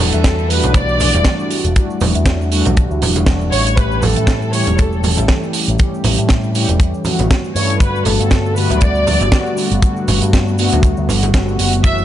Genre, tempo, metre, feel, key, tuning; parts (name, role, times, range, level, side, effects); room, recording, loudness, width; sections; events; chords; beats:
nu-disco, nu disco; 119 BPM; 4/4; swing 56% on 16ths; A4 = 440 Hz
dark studio violin section; melody; 0.0-12.0 s; A4 to E5; -20 LUFS; left 1 dB; ping-pong delay
mellow synth brass; accompaniment; 0.0-12.0 s; D3 to A4; -19 LUFS; equal; chorus, sidechain pumping
picked electric bass with an envelope filter; bass; 0.0-12.0 s; E1 to A2; -17 LUFS; equal
congas and cabasa; percussion; 0.0-12.0 s; -23 LUFS; right 3 dB
tight funk drum kit; drums; 0.1-12.0 s; hi-hat, snare drum; -20 LUFS; right 4 dB; studio reverb
kick drum; drums; 0.2-12.0 s; -14 LUFS; equal; studio reverb
light reverb, small room ambience; nothing above 11.0 kHz; -12 LUFS; side -12 dB against mid
0.0-12.0 A section
0.0 Em11; 3.8 A7; 7.8 Gmaj9
0.24 0.75 1.25 | 1.76 2.26 2.77 3.27 | 3.77 4.28 4.78 5.29 | 5.79 6.29 6.80 7.30 | 7.81 8.31 8.82 9.32 | 9.82 10.33 10.83 11.34 | 11.84